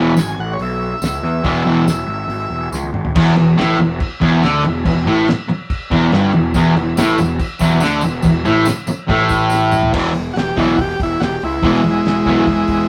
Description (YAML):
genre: garage rock duo or trio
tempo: 142 BPM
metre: 4/4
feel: straight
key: E major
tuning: A4 = 440 Hz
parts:
  - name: overdriven combo organ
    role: melody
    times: 0.0-2.7, 10.3-12.9 s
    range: G#3 to B5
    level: -22 LUFS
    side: equal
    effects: none
  - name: fuzz guitar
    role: riff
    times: 0.0-12.4 s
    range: E2 to E3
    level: -16 LUFS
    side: equal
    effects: distortion
  - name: fuzz picked electric bass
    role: bass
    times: 0.0-12.8 s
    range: E1 to E2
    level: -24 LUFS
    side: equal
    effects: overdrive
  - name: cloth-damped thuddy drum kit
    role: drums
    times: 0.2-12.8 s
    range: crash cymbal, hi-hat, kick drum, snare drum, toms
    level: -25 LUFS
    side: equal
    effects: none
  - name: tambourine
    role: percussion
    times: 0.2-2.8, 6.5-9.8 s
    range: none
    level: -36 LUFS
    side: equal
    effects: none
room: moderate small room reverb, RT60 0.5 s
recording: rough rehearsal-room recording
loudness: -16 LUFS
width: mono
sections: 0.0-3.2 A section; 3.2-9.9 B section; 9.9-12.9 C section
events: drum fill 2.7-3.2, 9.5-9.9; transistor combo organ solo 9.9-12.9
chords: 0.0 E; 3.2 Esus4; 9.9 E